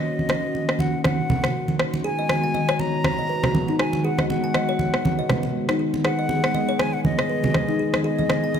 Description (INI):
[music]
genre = afro house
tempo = 120 BPM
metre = 4/4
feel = swing 57% on 16ths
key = unclear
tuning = A4 = 440 Hz
[part]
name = reedy concert flute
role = melody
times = 0.0-8.6 s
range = Eb5 to Bb5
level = -28 LUFS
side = left 2 dB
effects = dub echo
[part]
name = warm analog pad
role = sustained chords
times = 0.0-8.6 s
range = Eb3 to Ab4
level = -26 LUFS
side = left 1 dB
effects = chorus
[part]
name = congas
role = percussion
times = 0.2-8.6 s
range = none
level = -26 LUFS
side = right 3 dB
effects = none
[part]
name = electronic rim click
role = drums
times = 0.3-8.4 s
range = none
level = -27 LUFS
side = left 1 dB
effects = overdrive, small room ambience
[part]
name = kalimba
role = arpeggios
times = 2.0-8.6 s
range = Eb4 to Ab5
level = -28 LUFS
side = left 2 dB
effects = none
[sound]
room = light reverb, small room ambience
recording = none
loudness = -20 LUFS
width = side -8 dB against mid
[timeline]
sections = 0.0-8.6 A section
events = filter sweep on analog synth pad 0.0-8.6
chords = 0.0 Ebm7; 2.0 Abm7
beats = | 0.04 0.55 1.04 1.54 | 2.04 2.54 3.04 3.54 | 4.04 4.54 5.04 5.54 | 6.04 6.54 7.04 7.54 | 8.04 8.54